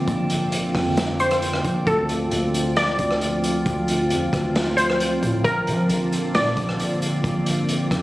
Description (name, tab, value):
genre	hip hop, atmospheric cloud-rap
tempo	134 BPM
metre	4/4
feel	half-time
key	unclear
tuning	A4 = 440 Hz
part	warbly dusty pluck	melody	0.0-7.2 s	A4 to D5	-24 LUFS	equal	chorus, analog delay
part	glassy FM pad	sustained chords	0.0-8.0 s	D3 to F4	-24 LUFS	equal	ensemble chorus, built-in reverb, sidechain pumping
part	long sustained 808-style bass	bass	0.0-8.0 s	Bb1 to F3	-26 LUFS	equal	none
part	drifting glass-harmonics texture	texture	0.0-8.0 s	C4 to A5	-31 LUFS	right 2 dB	chorus, built-in reverb
part	vintage drum kit	drums	0.1-8.0 s	hi-hat, kick drum, rim click, snare drum	-26 LUFS	equal	none
room	light reverb, small room reverb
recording	recorded on a phone in the room, studio reverb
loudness	-19 LUFS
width	side -17 dB against mid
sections	0.0-8.0 A section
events	none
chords	0.0 Bbmaj9; 1.9 Dm7; 5.5 Bbmaj9